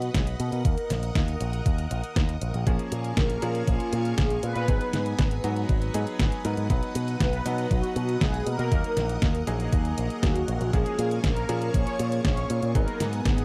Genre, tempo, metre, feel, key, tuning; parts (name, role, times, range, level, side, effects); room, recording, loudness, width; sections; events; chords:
italo disco; 119 BPM; 4/4; straight; G# dorian; A4 = 440 Hz
mellow synth brass; melody; 0.0-13.4 s; E#4 to C#5; -34 LUFS; equal; chorus, tape echo
string machine, full ensemble; sustained chords; 0.0-13.4 s; B3 to D#6; -41 LUFS; equal; ensemble chorus
picked electric bass with an envelope filter; bass; 0.0-13.4 s; G#1 to B2; -31 LUFS; equal; tube saturation
detuned 8-bit digital drum machine; drums; 0.0-13.4 s; hi-hat, snare drum; -32 LUFS; equal; overdrive
electronic kick drum; drums; 0.1-13.4 s; -28 LUFS; equal; overdrive
bright grand piano; stabs; 2.7-13.4 s; E#3 to B4; -35 LUFS; equal
little or no reverb; dry, close 1970s-style studio recording; -26 LUFS; mono
0.0-13.4 A section
0.0 B; 0.6 D#m; 2.7 A#m7; 4.7 G#m7; 6.7 B; 8.7 D#m; 10.7 A#m7; 12.8 G#m7